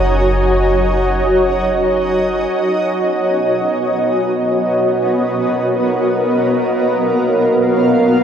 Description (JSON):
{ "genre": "ambient", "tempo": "free time", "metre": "none", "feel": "none", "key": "unclear", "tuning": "A4 = 440 Hz", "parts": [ { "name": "granular cloud pad", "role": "sustained chords", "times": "0.0-8.2 s", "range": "Cb4 to Bb5", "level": "-13 LUFS", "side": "equal", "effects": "built-in reverb" }, { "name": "round analog bass", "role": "bass", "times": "0.0-2.5 s", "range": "Gb1", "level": "-20 LUFS", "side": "equal", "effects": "none" } ], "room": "wet huge ambient reverb, RT60 7.0 s", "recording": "dark, warm production", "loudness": "-13 LUFS", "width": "side -8 dB against mid", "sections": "0.0-2.5 A section; 2.5-8.2 B section", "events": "none", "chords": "0.0 Gb6; 2.5 Cbmaj9#11" }